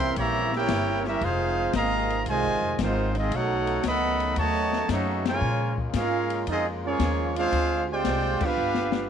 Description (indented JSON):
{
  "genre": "jazz, big band swing",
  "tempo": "114 BPM",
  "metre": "4/4",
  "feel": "swing 69% on 8ths",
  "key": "Bb minor",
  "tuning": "A4 = 441 Hz",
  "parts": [
    { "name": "clear trumpet section", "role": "melody", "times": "0.0-9.1 s", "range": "Ab3 to C6", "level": "-26 LUFS", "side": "left 1 dB", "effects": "none" },
    { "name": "warm trombone section", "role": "second line", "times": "0.0-9.1 s", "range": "C3 to G4", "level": "-29 LUFS", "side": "right 11 dB", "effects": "slapback echo" },
    { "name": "brilliant trombone section", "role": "sustained chords", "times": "0.0-9.1 s", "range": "Db3 to F4", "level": "-36 LUFS", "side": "left 2 dB", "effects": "none" },
    { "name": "upright bass", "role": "bass", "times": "0.0-9.1 s", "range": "F1 to Bb2", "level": "-30 LUFS", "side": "left 2 dB", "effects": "none" },
    { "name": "open jazz drum kit", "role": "drums", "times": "0.0-9.1 s", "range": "crash cymbal, hi-hat, kick drum, ride cymbal, snare drum", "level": "-33 LUFS", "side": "left 9 dB", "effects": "none" }
  ],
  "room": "studio reverb",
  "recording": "1960s-style stereo with parts hard left and right",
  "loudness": "-23 LUFS",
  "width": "side -8 dB against mid",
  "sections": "0.0-9.1 A section",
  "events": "band accent 5.2, 8.3; drum fill 8.6-9.1",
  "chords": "0.0 C7b9; 1.2 Fm7; 3.3 B9; 5.4 Bbm7; 7.5 Dm7b5; 8.6 G7",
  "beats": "0.16 0.69 | 1.22 1.74 2.27 2.79 | 3.32 3.84 4.37 4.89 | 5.42 5.95 6.47 7.00 | 7.52 8.05 8.57"
}